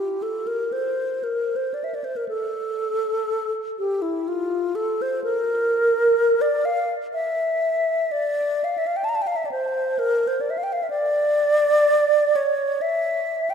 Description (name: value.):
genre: classical, free, expressive piece for unaccompanied alto flute.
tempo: 63 BPM.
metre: 3/4.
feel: uneven beats, rubato.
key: D minor.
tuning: A4 = 440 Hz.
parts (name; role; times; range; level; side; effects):
alto flute; solo; 0.0-13.5 s; E4 to Bb5; -20 LUFS; equal; none.
room: wet church reverb, RT60 3.1 s.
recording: none.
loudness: -20 LUFS.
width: side -7 dB against mid.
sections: 0.0-13.5 A section.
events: none.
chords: none.